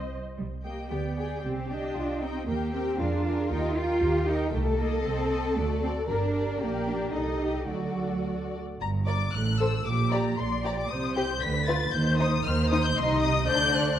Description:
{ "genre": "quick classical-period movement for string orchestra", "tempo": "116 BPM", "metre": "2/4", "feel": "rubato", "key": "C minor, G minor from 4.5 s", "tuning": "A4 = 439 Hz", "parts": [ { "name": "dark studio viola section", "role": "accompaniment", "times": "0.0-14.0 s", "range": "F#4 to Eb5", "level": "-35 LUFS", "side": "right 1 dB", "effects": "none" }, { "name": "warm studio double bass section", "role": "bass", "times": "0.0-14.0 s", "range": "G1 to F2", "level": "-30 LUFS", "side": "right 2 dB", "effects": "none" }, { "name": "warm studio cello section", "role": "bass", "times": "0.4-14.0 s", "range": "G2 to F4", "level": "-31 LUFS", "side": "right 2 dB", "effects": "none" }, { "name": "warm studio violin section", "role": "melody", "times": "0.6-14.0 s", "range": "D5 to B6", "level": "-32 LUFS", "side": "left 5 dB", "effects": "none" }, { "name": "dark studio violin section", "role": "second line", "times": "0.9-14.0 s", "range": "D4 to Eb5", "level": "-32 LUFS", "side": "left 3 dB", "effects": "none" } ], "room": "moderate concert hall reverb, RT60 1.9 s", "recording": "dark, warm production", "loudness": "-25 LUFS", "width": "side -10 dB against mid", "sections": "0.4-8.8 A section; 8.8-14.0 B section", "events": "none", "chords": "0.4 Cm; 0.9 G/D; 1.4 Cm; 2.5 Eb; 3.0 Bb7/F; 3.5 Eb; 4.5 Adim/C; 5.6 D; 6.1 Gm; 6.6 Gm/Bb; 7.1 Am7b5/C; 7.7 D; 8.8 Gm; 9.3 F#dim/A; 9.9 Gm/Bb; 10.9 Cm; 11.4 Bdim/D; 11.9 Cm/Eb; 13.0 Cm; 13.5 D7" }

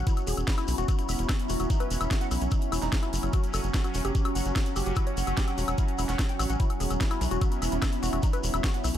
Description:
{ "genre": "psychedelic trance", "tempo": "147 BPM", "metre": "4/4", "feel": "straight", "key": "unclear", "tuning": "A4 = 440 Hz", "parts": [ { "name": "bubbling stepped-filter texture", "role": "sustained chords", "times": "0.0-9.0 s", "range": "F#3 to C#4", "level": "-34 LUFS", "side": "right 2 dB", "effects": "chorus, built-in reverb, sidechain pumping" }, { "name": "woody wave-folded pluck", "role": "riff", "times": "0.0-8.9 s", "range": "D#4 to G5", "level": "-36 LUFS", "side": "moving between left 8 dB and right 1 dB", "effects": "chorus, auto-pan, vintage 12-bit sampler grit, sidechain pumping, dub echo" }, { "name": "tight sequencer bass", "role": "bass", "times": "0.0-9.0 s", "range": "E1 to B1", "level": "-29 LUFS", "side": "equal", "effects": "none" }, { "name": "airy breathy pad", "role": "texture", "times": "0.0-9.0 s", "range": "B3 to F#5", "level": "-35 LUFS", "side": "equal", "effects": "chorus, sidechain pumping" }, { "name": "drum and bass drum kit", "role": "drums", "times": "0.1-9.0 s", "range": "hi-hat, snare drum, woodblock", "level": "-34 LUFS", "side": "left 2 dB", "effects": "overdrive" }, { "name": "electronic kick drum", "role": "drums", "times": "0.1-8.7 s", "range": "none", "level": "-26 LUFS", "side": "equal", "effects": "overdrive" }, { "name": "shekere", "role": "percussion", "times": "0.1-9.0 s", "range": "none", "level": "-41 LUFS", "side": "left 4 dB", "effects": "none" } ], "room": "little or no reverb", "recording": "none", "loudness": "-25 LUFS", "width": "side -11 dB against mid", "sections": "0.0-9.0 A section", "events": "none", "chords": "0.1 E5; 3.3 F#5; 6.6 E5" }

